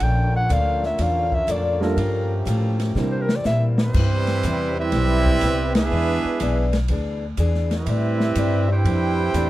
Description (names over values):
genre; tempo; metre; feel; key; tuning
jazz, big band swing; 122 BPM; 4/4; swing 67% on 8ths; C major from 3.9 s; A4 = 441 Hz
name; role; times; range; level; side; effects
warm clarinet; melody; 0.0-3.7 s; Bb4 to G5; -25 LUFS; equal; tape echo
picked acoustic archtop guitar; accompaniment; 0.0-9.5 s; A2 to A4; -29 LUFS; left 5 dB; none
warm trombone section; sustained chords; 0.0-3.9 s; D3 to Bb4; -32 LUFS; equal; none
upright bass; bass; 0.0-9.5 s; Bb1 to C3; -21 LUFS; equal; none
open jazz drum kit; drums; 0.0-9.5 s; crash cymbal, hi-hat, kick drum, ride cymbal, snare drum; -28 LUFS; equal; none
warm baby grand piano; accompaniment; 1.8-3.3 s; G3 to Bb4; -24 LUFS; right 3 dB; none
clear trumpet section; melody; 3.8-9.5 s; G3 to G5; -25 LUFS; right 2 dB; none
clear trombone section; second line; 3.8-9.5 s; E3 to G4; -25 LUFS; right 4 dB; none
room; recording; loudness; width
little or no reverb; dry, close 1970s-style studio recording; -18 LUFS; side -15 dB against mid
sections
0.0-3.9 A section; 3.9-9.5 B section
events
clarinet solo 0.0-3.9; drum fill 3.0-3.9; band accent 5.7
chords
0.0 Bbmaj7; 2.0 Gm9; 3.0 C7; 3.9 Cmaj7; 7.9 Am11